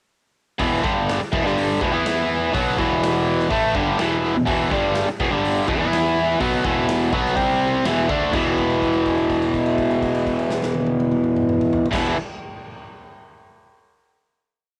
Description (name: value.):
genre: garage rock duo or trio.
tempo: 124 BPM.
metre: 4/4.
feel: straight.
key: E minor.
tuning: A4 = 441 Hz.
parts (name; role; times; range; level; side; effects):
biting overdriven guitar; riff; 0.6-12.2 s; E2 to E4; -21 LUFS; equal; cassette tape.
picked electric bass; bass; 0.6-12.1 s; E1 to E2; -33 LUFS; equal; overdrive.
raw garage drum kit; drums; 0.6-12.0 s; crash cymbal, hi-hat, kick drum, snare drum, toms; -31 LUFS; equal; cassette tape.
room: light reverb.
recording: home recording on cassette.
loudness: -20 LUFS.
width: mono.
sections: 0.6-8.3 verse; 8.3-12.2 final chord.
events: held note 8.3-11.9.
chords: 0.6 Em; 7.4 C5; 7.8 E5.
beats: | 0.59 1.08 1.57 2.05 | 2.54 3.02 3.51 3.99 | 4.47 4.95 5.43 5.92 | 6.40 6.88 7.36 7.84 | 8.33 8.81 9.29 9.78 | 10.27 10.75 11.24 11.73.